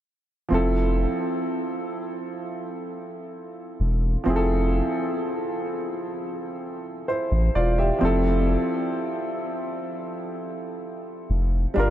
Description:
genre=contemporary R&B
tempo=64 BPM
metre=4/4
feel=straight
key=F major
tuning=A4 = 442 Hz
part: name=warm concert grand piano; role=accompaniment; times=0.5-11.9 s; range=F3 to E5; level=-25 LUFS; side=right 1 dB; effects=none
part: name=saturated sub bass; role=bass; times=0.5-11.9 s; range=E1 to A1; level=-22 LUFS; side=equal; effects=none
room=moderate huge ambient reverb, RT60 7.9 s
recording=dreamy mix soaked in reverb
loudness=-23 LUFS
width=side -12 dB against mid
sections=0.5-11.9 A section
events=none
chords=0.5 Fmaj7; 8.0 Fmaj9

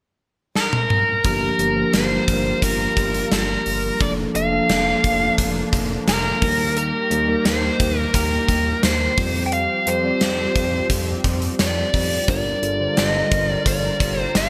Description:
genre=1980s-style pop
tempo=87 BPM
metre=4/4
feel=straight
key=G minor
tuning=A4 = 435 Hz
part: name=biting lead guitar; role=melody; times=0.6-14.5 s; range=Bb4 to G5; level=-24 LUFS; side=equal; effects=overdrive
part: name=gated 80s drum kit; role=drums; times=0.6-14.5 s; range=hi-hat, kick drum, snare drum, toms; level=-24 LUFS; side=equal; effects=none
part: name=mellow tine electric piano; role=accompaniment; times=1.2-14.5 s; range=D3 to D5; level=-27 LUFS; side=equal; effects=none
part: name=lush unison pad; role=sustained chords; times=1.6-14.5 s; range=Eb3 to Bb4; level=-33 LUFS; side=equal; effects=chorus, phaser
part: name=smooth gliding synth bass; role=bass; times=1.2-14.5 s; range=F1 to F2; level=-29 LUFS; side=equal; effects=none
room=moderate plate reverb, RT60 2.4 s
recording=bright 1980s-style digital production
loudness=-20 LUFS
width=mono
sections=0.0-1.2 A section; 1.2-14.5 B section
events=drum fill 0.6-1.2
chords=0.0 N.C.; 1.2 Gm7; 4.0 Bbmaj7/F; 6.4 Eb; 9.2 Fsus2; 12.3 Gm7

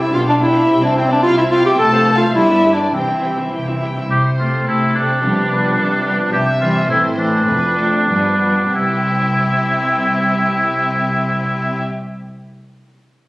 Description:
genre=quick classical-period movement for symphony orchestra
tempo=90-110 BPM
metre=2/4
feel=rubato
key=C major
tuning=A4 = 440 Hz
part: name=muted chamber violin section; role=melody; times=0.0-11.8 s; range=G4 to A5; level=-27 LUFS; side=left 1 dB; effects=none
part: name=clear clarinet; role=second line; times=0.0-3.5 s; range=C4 to A4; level=-14 LUFS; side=equal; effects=none
part: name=muted chamber violin section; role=second line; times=0.0-11.8 s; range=B3 to A5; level=-23 LUFS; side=left 1 dB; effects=none
part: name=muted chamber viola section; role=accompaniment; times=0.0-11.8 s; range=E3 to C5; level=-22 LUFS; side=equal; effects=none
part: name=muted chamber cello section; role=bass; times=0.0-11.8 s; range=C2 to D4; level=-22 LUFS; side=equal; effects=none
part: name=muted studio double bass section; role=bass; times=0.0-11.8 s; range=F1 to C2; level=-25 LUFS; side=equal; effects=none
part: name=warm oboe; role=second line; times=4.1-11.8 s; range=D4 to G4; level=-17 LUFS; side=equal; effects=none
room=moderate scoring stage reverb, RT60 1.4 s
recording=recorded on a phone in the room, studio ambience, compression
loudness=-13 LUFS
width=side -20 dB against mid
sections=0.0-4.1 A section; 4.1-8.7 B section; 8.7-11.3 C section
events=slowing down 5.8-8.7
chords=0.1 G7/B; 0.7 C; 1.8 F; 2.4 G; 2.9 C; 4.1 C69; 5.2 G7/C; 6.3 C; 6.9 Am; 7.5 Dm7/F; 8.1 G7; 8.7 C

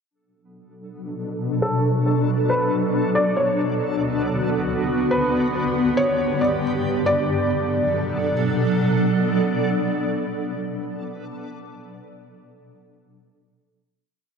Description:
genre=hip hop, atmospheric cloud-rap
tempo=free time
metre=none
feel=none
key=B minor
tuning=A4 = 441 Hz
part: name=granular cloud pad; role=sustained chords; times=1.0-11.3 s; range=D2 to A4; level=-21 LUFS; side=equal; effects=built-in reverb, low-pass filter
part: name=backwards swelling texture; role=texture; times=1.3-11.3 s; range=B3 to D5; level=-30 LUFS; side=equal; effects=built-in reverb
part: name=felt-muted upright piano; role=melody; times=1.6-8.3 s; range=A4 to D5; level=-24 LUFS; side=equal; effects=low-pass filter, ping-pong delay
room=wet lush hall reverb, RT60 2.5 s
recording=dark, warm production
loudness=-19 LUFS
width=side -6 dB against mid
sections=0.1-7.1 breakdown; 7.1-10.5 final chord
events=filter sweep 0.1-7.1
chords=0.1 Bm7; 3.6 D6; 5.3 G; 7.1 Bm7

